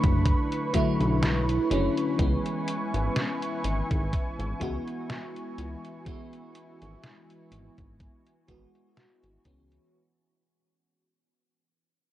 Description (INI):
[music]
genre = vaporwave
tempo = 62 BPM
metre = 4/4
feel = swing 55% on 16ths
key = unclear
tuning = A4 = 439 Hz
[part]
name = FM electric piano with soft pad layer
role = accompaniment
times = 0.0-10.0 s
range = D3 to F#4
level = -30 LUFS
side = equal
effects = phaser, lush chorus, analog delay
[part]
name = lush unison pad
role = sustained chords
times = 0.0-9.9 s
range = D3 to C#6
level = -34 LUFS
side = right 1 dB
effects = chorus
[part]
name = chorused synth bass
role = bass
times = 0.0-9.8 s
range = F#1 to C#2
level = -28 LUFS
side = equal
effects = tube saturation
[part]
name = detuned 8-bit digital drum machine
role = drums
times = 0.0-9.9 s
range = hi-hat, snare drum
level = -33 LUFS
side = equal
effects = none
[part]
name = electronic kick drum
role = drums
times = 0.0-9.7 s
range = none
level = -27 LUFS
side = equal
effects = none
[sound]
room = little or no reverb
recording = worn, warbling old tape, cassette tape, warbly pitch drift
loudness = -25 LUFS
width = side -13 dB against mid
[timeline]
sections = 0.0-9.9 A section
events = fade-out 0.0-9.9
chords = 0.0 Bm9; 2.2 C#m7